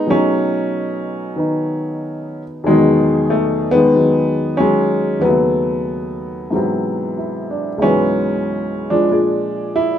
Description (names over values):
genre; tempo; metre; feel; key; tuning
solo jazz; 93 BPM; 4/4; swing 66% on 8ths; unclear; A4 = 441 Hz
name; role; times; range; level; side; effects
warm upright piano; solo; 0.0-10.0 s; C#2 to D5; -15 LUFS; left 1 dB; none
room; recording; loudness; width
wet studio reverb, RT60 0.6 s; minimal, uncompressed stereo recording; -15 LUFS; side -10 dB against mid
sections
0.0-10.0 A section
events
none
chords
0.1 B13; 2.7 Emaj9; 5.2 D#m7b5; 6.5 G#7alt; 7.8 C#m7; 9.1 A#7